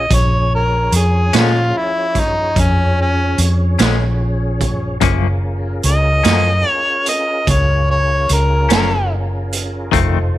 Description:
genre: slow blues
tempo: 49 BPM (dotted quarters)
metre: 12/8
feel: straight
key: unclear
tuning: A4 = 442 Hz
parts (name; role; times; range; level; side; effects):
- warm harmonica; melody; 0.0-9.1 s; Db4 to Eb5; -17 LUFS; equal; overdrive
- tonewheel organ; sustained chords; 0.0-10.4 s; F3 to Db5; -26 LUFS; equal; slow rotary speaker, chorus vibrato
- vintage muted fingered electric bass; bass; 0.0-10.4 s; F1 to Bb2; -16 LUFS; equal; none
- raw garage drum kit; drums; 0.1-10.1 s; hi-hat, kick drum, snare drum; -19 LUFS; right 3 dB; none
- semi-hollow electric guitar; accompaniment; 1.3-10.2 s; F2 to Db4; -19 LUFS; left 11 dB; tremolo
room: small room ambience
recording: 1960s-style stereo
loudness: -13 LUFS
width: side -14 dB against mid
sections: 0.0-10.4 A section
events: none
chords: 0.0 Bbm7; 5.0 Gbmaj7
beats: | 0.10 1.33 2.56 3.79 | 5.01 6.24 7.47 8.70 | 9.93

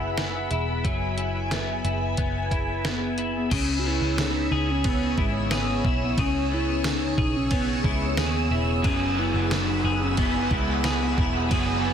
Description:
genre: dream pop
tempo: 90 BPM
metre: 4/4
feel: straight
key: C# minor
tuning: A4 = 439 Hz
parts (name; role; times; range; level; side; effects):
- ensemble organ-string; sustained chords; 0.0-11.9 s; G#4 to E6; -30 LUFS; right 1 dB; phaser, ensemble chorus, low-pass filter
- electric guitar at the edge of break-up; arpeggios; 0.0-11.9 s; C#3 to G#4; -29 LUFS; left 5 dB; analog chorus, low-pass filter, ping-pong delay
- vintage muted picked electric bass; bass; 0.0-11.9 s; E1 to D#2; -28 LUFS; equal; none
- detuned 8-bit digital drum machine; drums; 0.2-11.7 s; crash cymbal, hi-hat, kick drum, ride cymbal, snare drum, tambourine; -28 LUFS; right 1 dB; none
- hollow clarinet-like synth lead; melody; 2.9-11.9 s; G#3 to F#4; -28 LUFS; right 1 dB; chorus, ping-pong delay
- raw garage guitar; accompaniment; 8.8-11.9 s; F#3 to G#4; -29 LUFS; right 2 dB; overdrive, harmonic tremolo, wide subtle chorus
room: digital ambience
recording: dense, heavily limited modern master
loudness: -22 LUFS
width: side -8 dB against mid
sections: 0.0-3.5 A section; 3.5-11.9 B section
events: none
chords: 0.0 F#9sus4; 3.5 C#m7; 8.8 F#9sus4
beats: 0.18 | 0.84 1.51 2.18 2.85 | 3.51 4.18 4.84 5.51 | 6.18 6.84 7.51 8.18 | 8.85 9.51 10.18 10.85 | 11.51

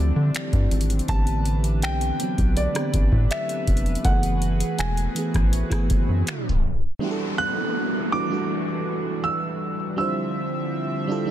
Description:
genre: contemporary R&B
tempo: 81 BPM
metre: 4/4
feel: straight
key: unclear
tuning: A4 = 440 Hz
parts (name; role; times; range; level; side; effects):
- dark concert grand piano; melody; 0.0-11.3 s; D5 to F#6; -29 LUFS; right 1 dB; ping-pong delay
- FM electric piano; accompaniment; 0.0-11.3 s; D3 to C5; -28 LUFS; right 2 dB; chorus
- chorused pulse-width pad; sustained chords; 0.0-11.3 s; D3 to E5; -31 LUFS; right 1 dB; none
- rubbery square bass; bass; 0.0-6.9 s; D#1 to D3; -23 LUFS; equal; none
- downlifter and swell; sound effects; 4.6-11.3 s; none; -33 LUFS; left 1 dB; none
- booming analog drum machine; drums; 0.3-6.8 s; finger snaps, hi-hat, kick drum, rim click; -23 LUFS; equal; soft clipping on snare
room: little or no reverb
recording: dense, heavily limited modern master, tape stop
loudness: -21 LUFS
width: side -12 dB against mid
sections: 0.0-7.0 A section; 7.0-11.3 B section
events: swell 4.6-7.0; tape stop 6.3-7.0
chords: 0.0 Dm11; 1.1 Am11; 4.0 F#m11; 7.0 Em11; 10.0 Dm11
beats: 0.34 | 1.08 1.82 2.56 3.31 | 4.05 4.79 5.53 6.27 | 7.01 7.75 8.49 9.23 | 9.97 10.71

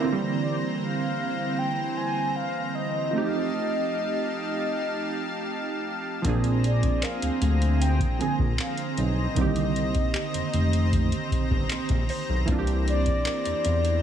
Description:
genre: contemporary R&B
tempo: 77 BPM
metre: 4/4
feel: straight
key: C minor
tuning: A4 = 441 Hz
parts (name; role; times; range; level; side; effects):
- warm analog keys; accompaniment; 0.0-14.0 s; D3 to Ab4; -29 LUFS; right 6 dB; chorus
- lush unison pad; sustained chords; 0.0-14.0 s; E3 to Bb5; -32 LUFS; left 2 dB; chorus, sidechain pumping
- mellow horn-like synth lead; melody; 0.4-14.0 s; D5 to Ab5; -31 LUFS; left 2 dB; chorus, tape echo
- smooth synth bass; bass; 6.2-14.0 s; F1 to E2; -24 LUFS; equal; none
- booming analog drum machine; drums; 6.2-14.0 s; handclaps, hi-hat, kick drum; -27 LUFS; equal; none
- mallet-like synth pluck; texture; 7.0-14.0 s; G4 to C5; -42 LUFS; left 2 dB; none
room: digital ambience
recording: small room ambience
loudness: -23 LUFS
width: side -9 dB against mid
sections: 0.0-14.0 A section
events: none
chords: 0.0 C9; 3.1 F9; 6.2 Bb9; 9.4 Cm9; 12.5 C9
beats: | 0.01 0.79 1.57 2.35 | 3.13 3.91 4.69 5.47 | 6.25 7.03 7.81 8.59 | 9.36 10.14 10.92 11.70 | 12.48 13.26

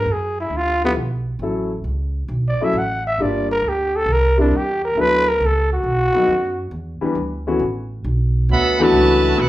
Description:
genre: jazz, big band swing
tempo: 135 BPM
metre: 4/4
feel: swing 67% on 8ths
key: D major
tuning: A4 = 439 Hz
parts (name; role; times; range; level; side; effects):
- growling trumpet; melody; 0.0-6.7 s; B3 to F#5; -18 LUFS; equal; none
- upright bass; bass; 0.0-9.5 s; G1 to F#2; -22 LUFS; right 1 dB; none
- warm grand piano; accompaniment; 0.8-9.4 s; E3 to Bb4; -19 LUFS; left 2 dB; none
- brilliant trumpet section; melody; 8.5-9.5 s; E4 to B5; -19 LUFS; right 2 dB; none
- warm trombone section; second line; 8.5-9.5 s; B2 to F#4; -20 LUFS; right 3 dB; none
room: moderate large studio reverb, RT60 0.8 s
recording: band playing live in one room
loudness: -16 LUFS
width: side -15 dB against mid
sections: 0.0-8.5 A section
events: trumpet solo 0.0-8.5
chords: 0.0 G#7(no3); 0.5 G13; 1.4 F#m7; 3.2 Gm7; 4.1 C9; 5.0 D69; 5.8 B7; 6.7 Em7; 7.6 Asus2; 8.5 D69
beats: 0.08 0.52 0.97 | 1.41 1.86 2.30 2.74 | 3.19 3.63 4.08 4.52 | 4.96 5.41 5.85 6.29 | 6.74 7.18 7.62 8.06 | 8.50 8.94 9.38

